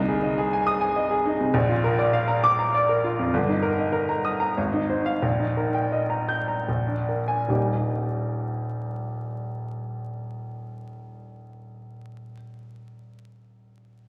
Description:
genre	classical, virtuoso piano study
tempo	73-103 BPM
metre	3/4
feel	rubato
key	Eb major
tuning	A4 = 438 Hz
part	warm grand piano	solo	0.0-14.1 s	Eb1 to G6	-25 LUFS	equal	none
room	wet concert hall reverb, RT60 2.0 s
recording	vinyl crackle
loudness	-25 LUFS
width	mono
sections	0.0-7.5 A section; 7.5-12.2 B section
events	slowing down 2.4-7.5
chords	0.0 Ab/C; 1.5 Bb; 3.3 Eb/G; 4.6 Fm7/Ab; 5.2 Eb/Bb; 6.7 Bb7; 7.5 Eb

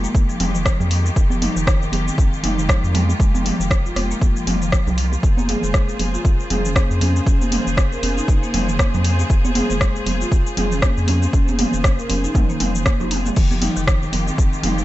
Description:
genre	afro house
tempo	118 BPM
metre	4/4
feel	swing 57% on 16ths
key	unclear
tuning	A4 = 440 Hz
part	clear studio string section	sustained chords	0.0-14.8 s	Db3 to C5	-28 LUFS	left 1 dB	sidechain pumping
part	marimba with soft mallets	arpeggios	0.0-14.8 s	Eb3 to Bb4	-25 LUFS	equal	vintage 12-bit sampler grit, sidechain pumping, ping-pong delay
part	round analog bass	bass	0.0-14.8 s	F1 to F2	-22 LUFS	equal	sidechain pumping
part	deep house drum kit	drums	0.0-14.8 s	crash cymbal, hi-hat, rim click, shaker, toms	-24 LUFS	equal	none
part	electronic kick drum	drums	0.1-14.5 s	none	-17 LUFS	equal	none
part	congas	percussion	0.1-14.7 s	none	-27 LUFS	right 4 dB	none
room	little or no reverb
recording	nothing above 8.0 kHz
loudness	-16 LUFS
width	side -15 dB against mid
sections	0.0-14.8 A section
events	drum fill 13.0-13.4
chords	0.0 Fm11; 5.2 Bbm9/F; 13.4 Fm11

